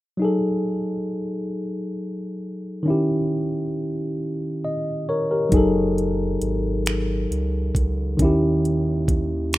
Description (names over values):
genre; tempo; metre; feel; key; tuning
slow six-eight R&B; 45 BPM (dotted quarters); 6/8; straight; F# dorian; A4 = 441 Hz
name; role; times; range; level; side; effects
mellow tine electric piano; accompaniment; 0.2-9.6 s; D#3 to D#5; -22 LUFS; equal; none
smooth gliding synth bass; bass; 5.5-9.6 s; F#1 to D#2; -25 LUFS; right 1 dB; none
smooth R&B drum kit; drums; 5.5-9.6 s; finger snaps, hi-hat, kick drum; -21 LUFS; right 1 dB; none
room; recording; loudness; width
little or no reverb; rough home demo mix; -20 LUFS; side -16 dB against mid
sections
0.2-9.6 A section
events
none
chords
0.2 F#m69; 2.9 D#7b9; 5.5 F#m69; 8.2 D#7b9